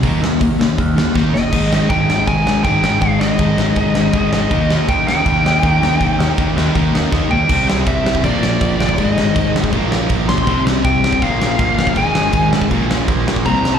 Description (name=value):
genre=punk rock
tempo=161 BPM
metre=4/4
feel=straight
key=unclear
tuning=A4 = 438 Hz
part: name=cranked stack guitar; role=riff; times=0.0-13.8 s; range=Ab2 to Eb4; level=-22 LUFS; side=right 12 dB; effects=overdrive, slapback echo
part: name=sludgy distorted guitar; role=riff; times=0.0-13.8 s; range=Ab2 to Eb4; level=-19 LUFS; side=left 8 dB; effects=overdrive, slapback echo
part: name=growling picked electric bass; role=bass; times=0.0-13.8 s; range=G1 to Eb2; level=-21 LUFS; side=right 1 dB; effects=overdrive
part: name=big rock drum kit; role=drums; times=0.0-13.7 s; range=crash cymbal, hi-hat, kick drum, snare drum, toms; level=-18 LUFS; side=right 1 dB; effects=none
part: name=dark smooth lead guitar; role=melody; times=1.3-13.8 s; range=D5 to C6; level=-19 LUFS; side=equal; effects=overdrive, slapback echo, digital delay
room=studio ambience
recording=live gig heard through the venue's PA, club reverb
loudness=-13 LUFS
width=side -8 dB against mid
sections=0.0-1.5 A section; 1.5-7.5 B section; 7.5-13.8 C section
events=drum fill 1.2-1.5, 7.1-7.5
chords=0.0 Eb; 1.5 Ab5; 4.5 Eb; 7.5 C; 8.2 Bb; 9.0 Ab5; 9.7 Bb5; 10.5 C5; 11.2 Bb5; 12.0 Ab5; 12.7 Bb5